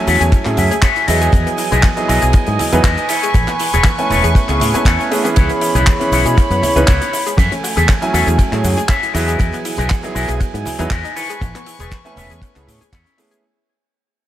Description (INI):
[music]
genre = nu-disco, nu disco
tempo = 119 BPM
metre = 4/4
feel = swing 53% on 16ths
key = unclear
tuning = A4 = 439 Hz
[part]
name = clear concert grand piano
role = accompaniment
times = 0.0-13.4 s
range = E3 to G#5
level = -20 LUFS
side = right 2 dB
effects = sidechain pumping, analog delay
[part]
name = warm studio string section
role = sustained chords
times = 0.0-13.4 s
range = A3 to C#6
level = -22 LUFS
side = right 1 dB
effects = vintage 12-bit sampler grit, sidechain pumping
[part]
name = analog pluck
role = arpeggios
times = 0.0-13.4 s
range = B3 to G#4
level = -26 LUFS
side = left 5 dB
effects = chorus, sidechain pumping, tape echo
[part]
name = electric guitar with an envelope filter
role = riff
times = 0.1-13.2 s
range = E4 to F#5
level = -21 LUFS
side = left 4 dB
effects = wide subtle chorus, analog delay
[part]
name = fingered electric bass with an envelope filter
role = bass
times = 0.1-13.0 s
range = E1 to B2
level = -18 LUFS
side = equal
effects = none
[part]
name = damped 70s drum kit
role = drums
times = 0.1-13.4 s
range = handclaps, hi-hat, ride cymbal, shaker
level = -23 LUFS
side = equal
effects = studio reverb
[part]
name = maracas, congas and bongos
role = percussion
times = 0.2-13.4 s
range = none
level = -28 LUFS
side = right 2 dB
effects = none
[part]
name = kick drum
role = drums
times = 0.3-13.0 s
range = none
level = -13 LUFS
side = equal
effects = studio reverb
[sound]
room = light reverb, small room ambience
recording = none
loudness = -12 LUFS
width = side -12 dB against mid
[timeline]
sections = 0.0-13.4 A section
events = drop 0.0-13.4; clean electric guitar fill 0.3-1.3; fade-out 8.1-13.4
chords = 0.0 F#m9; 1.1 Emaj7; 3.1 Amaj9; 5.4 C#m7; 7.4 F#m9; 9.1 Emaj7; 11.2 Amaj9